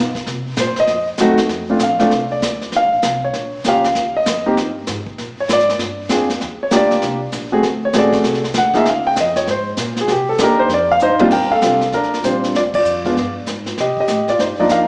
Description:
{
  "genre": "jazz piano trio",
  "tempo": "196 BPM",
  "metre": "4/4",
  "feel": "swing 63% on 8ths",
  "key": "Bb major",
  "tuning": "A4 = 440 Hz",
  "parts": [
    { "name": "upright bass", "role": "bass", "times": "0.0-14.9 s", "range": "A1 to C3", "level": "-30 LUFS", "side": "equal", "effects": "none" },
    { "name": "vintage brush drum kit", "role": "drums", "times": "0.1-14.9 s", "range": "brushed snare drum, crash cymbal, hi-hat, kick drum, ride cymbal, snare drum, toms", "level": "-26 LUFS", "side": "equal", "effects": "none" },
    { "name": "warm concert grand piano", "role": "melody", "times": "0.6-14.9 s", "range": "Bb2 to G5", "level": "-17 LUFS", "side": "equal", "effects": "none" }
  ],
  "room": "wet recital hall reverb, RT60 1.5 s",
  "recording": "recorded in a church or concert hall, small speaker sound",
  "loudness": "-17 LUFS",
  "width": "mono",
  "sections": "0.0-1.5 A section; 1.5-11.3 A section; 11.3-14.9 B section",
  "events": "grand piano solo 0.0-11.3; drum fill 11.0-11.3; band accent 12.7",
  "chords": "0.3 Bbsus2; 0.9 F7b9; 1.5 Bb; 2.7 Eb7(no3) (rootless); 4.0 Abmaj7(no3); 5.2 Bb7; 6.4 Ebmaj7; 7.6 D7#11; 8.9 Db6; 10.1 Cm7; 10.7 F5; 11.3 Bb6; 12.5 Dm; 13.2 N.C.; 13.8 Cm11",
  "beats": "| 0.28 0.58 0.89 1.19 | 1.50 1.81 2.11 2.42 | 2.73 3.03 3.34 3.65 | 3.95 4.26 4.57 4.87 | 5.18 5.49 5.79 6.10 | 6.41 6.71 7.02 7.33 | 7.63 7.94 8.25 8.55 | 8.86 9.17 9.47 9.78 | 10.09 10.40 10.70 11.01 | 11.32 11.62 11.93 12.24 | 12.55 12.85 13.16 13.47 | 13.78 14.08 14.39 14.70"
}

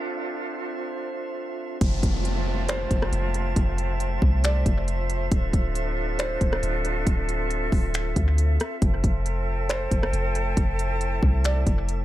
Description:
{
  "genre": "hip hop, atmospheric cloud-rap",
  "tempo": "137 BPM",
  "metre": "4/4",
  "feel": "half-time",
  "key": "F major",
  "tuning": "A4 = 442 Hz",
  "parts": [
    { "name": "felt-muted upright piano", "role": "melody", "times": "0.0, 2.7-7.0, 9.7-12.0 s", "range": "C5 to D5", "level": "-32 LUFS", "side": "right 1 dB", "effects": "low-pass filter, analog delay" },
    { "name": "bright flute section", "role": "sustained chords", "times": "0.0-12.0 s", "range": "D4 to A5", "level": "-31 LUFS", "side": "right 2 dB", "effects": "sidechain pumping, low-pass filter" },
    { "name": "drifting glass-harmonics texture", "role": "texture", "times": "0.0-12.0 s", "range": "A3 to E5", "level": "-37 LUFS", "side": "left 1 dB", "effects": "chorus, built-in reverb" },
    { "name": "soft 808-style bass", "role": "bass", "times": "1.8-12.0 s", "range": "D1 to D2", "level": "-25 LUFS", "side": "equal", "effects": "none" },
    { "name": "trap drum kit", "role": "drums", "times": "1.8-12.0 s", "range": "finger snaps, hi-hat, kick drum, rim click", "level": "-24 LUFS", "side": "equal", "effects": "none" },
    { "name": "downlifter", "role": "sound effects", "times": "1.8-5.3 s", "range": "none", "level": "-35 LUFS", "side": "left 1 dB", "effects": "none" }
  ],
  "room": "little or no reverb",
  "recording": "echo-heavy mix",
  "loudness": "-22 LUFS",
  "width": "side -14 dB against mid",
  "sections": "0.0-1.8 A section; 1.8-12.0 B section",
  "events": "none",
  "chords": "0.0 Dm9; 1.8 Fmaj7; 5.3 Dm9; 8.8 Fmaj7",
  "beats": "| 0.06 0.50 0.94 1.37 | 1.81 2.25 2.69 3.12 | 3.56 4.00 4.44 4.88 | 5.32 5.75 6.19 6.63 | 7.07 7.50 7.94 8.38 | 8.82 9.26 9.69 10.13 | 10.57 11.01 11.45 11.88"
}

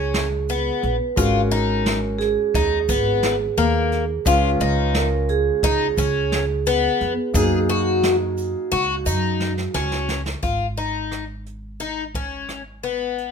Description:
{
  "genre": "progressive instrumental, band music in an uneven meter",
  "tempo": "175 BPM (eighths)",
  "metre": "9/8",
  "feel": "straight",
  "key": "G# dorian",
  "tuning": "A4 = 440 Hz",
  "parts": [
    { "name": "vibraphone with medium mallets", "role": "second line", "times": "0.0-10.1 s", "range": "F#4 to B4", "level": "-24 LUFS", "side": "right 8 dB", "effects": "none" },
    { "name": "warm concert grand piano", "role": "accompaniment", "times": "0.0-10.4 s", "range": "G#3 to G#4", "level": "-27 LUFS", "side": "left 3 dB", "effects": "none" },
    { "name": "picked twelve-string acoustic guitar", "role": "arpeggios", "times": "0.0-13.3 s", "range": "A#3 to G#4", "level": "-23 LUFS", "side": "left 7 dB", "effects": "none" },
    { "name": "upright bass", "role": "bass", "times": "0.0-13.3 s", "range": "G#1 to F#2", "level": "-25 LUFS", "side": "equal", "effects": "none" },
    { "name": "jazz brush drum kit", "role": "drums", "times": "0.1-13.3 s", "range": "hi-hat, kick drum, rim click, snare drum", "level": "-27 LUFS", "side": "right 1 dB", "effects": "none" },
    { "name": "egg shaker", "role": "percussion", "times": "0.5-9.4 s", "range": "none", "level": "-33 LUFS", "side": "right 4 dB", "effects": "none" }
  ],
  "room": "light reverb",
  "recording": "none",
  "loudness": "-18 LUFS",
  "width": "side -6 dB against mid",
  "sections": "0.0-10.4 A section; 10.4-13.3 B section",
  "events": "drum fill 9.4-10.4",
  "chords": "0.0 C#7; 1.2 G#m7; 4.3 C#7; 7.3 F#add9; 10.4 G#m",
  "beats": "0.15 0.49 0.83 | 1.18 1.52 1.86 2.21 2.55 2.89 3.23 3.58 3.92 | 4.26 4.61 4.95 5.29 5.63 5.97 6.32 6.66 7.00 | 7.34 7.69 8.03 8.37 8.72 9.06 9.40 9.74 10.09 | 10.43 10.78 11.12 11.46 11.81 12.15 12.50 12.84 13.19"
}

